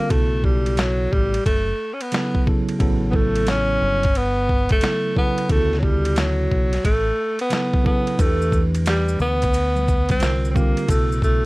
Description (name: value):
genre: hip hop, jazz-hop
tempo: 89 BPM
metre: 4/4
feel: swing 65% on 16ths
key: E dorian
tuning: A4 = 440 Hz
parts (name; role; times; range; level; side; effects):
- breathy tenor saxophone; melody; 0.0-11.5 s; F#3 to C#4; -22 LUFS; equal; none
- tine electric piano; accompaniment; 0.0-11.5 s; C#3 to B4; -24 LUFS; right 2 dB; medium stereo tremolo
- deep dub fingered electric bass; bass; 0.1-11.5 s; F#1 to E2; -23 LUFS; equal; none
- boom bap sampler-style drum kit; drums; 0.1-11.4 s; hi-hat, kick drum, ride cymbal, snare drum; -22 LUFS; equal; none
- maracas and congas; percussion; 8.2-11.4 s; none; -32 LUFS; left 2 dB; none
room: light reverb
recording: vinyl crackle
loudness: -17 LUFS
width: side -22 dB against mid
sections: 0.0-11.5 A section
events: none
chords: 0.1 Bsus2; 2.8 A13; 5.5 D69; 8.2 Em7; 10.2 Csus2; 10.9 Bsus2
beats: | 0.10 0.78 1.45 2.12 | 2.80 3.47 4.15 4.82 | 5.49 6.17 6.84 7.52 | 8.19 8.87 9.54 10.21 | 10.89